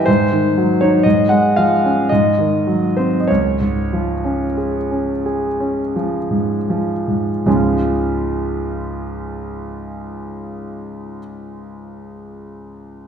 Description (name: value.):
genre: classical, romantic nocturne for solo piano.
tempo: 39-63 BPM.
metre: 3/4.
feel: rubato.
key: Db major.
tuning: A4 = 436 Hz.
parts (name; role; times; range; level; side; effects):
warm concert grand piano; solo; 0.0-13.1 s; Db2 to Gb5; -16 LUFS; equal; none.
room: wet scoring stage reverb, RT60 1.6 s.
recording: minimal, uncompressed stereo recording.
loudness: -15 LUFS.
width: side -7 dB against mid.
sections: 0.0-7.5 A section; 7.5-11.9 B section.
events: slowing down 0.0-7.5.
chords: 0.1 Ab7; 1.0 Db/Ab; 2.1 Ab7; 3.3 Db.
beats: | 0.07 1.05 2.09 | 3.29 4.58 5.95 | 7.45 8.96 10.46.